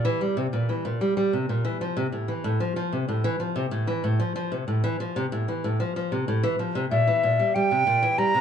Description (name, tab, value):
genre	folktronica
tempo	94 BPM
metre	4/4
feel	straight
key	unclear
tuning	A4 = 440 Hz
part	fingerpicked steel-string acoustic guitar	arpeggios	0.0-8.4 s	A2 to G3	-24 LUFS	equal	vintage 12-bit sampler grit, ping-pong delay
part	bright wooden flute	melody	6.9-8.4 s	E5 to Bb5	-21 LUFS	left 1 dB	none
room	wet small room reverb, RT60 0.6 s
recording	none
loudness	-23 LUFS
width	side -8 dB against mid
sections	0.0-8.4 A section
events	none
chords	0.0 C7; 1.8 Fmaj7; 6.9 C7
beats	0.53 1.17 | 1.80 2.44 3.08 3.72 | 4.36 5.00 5.63 6.27 | 6.91 7.55 8.19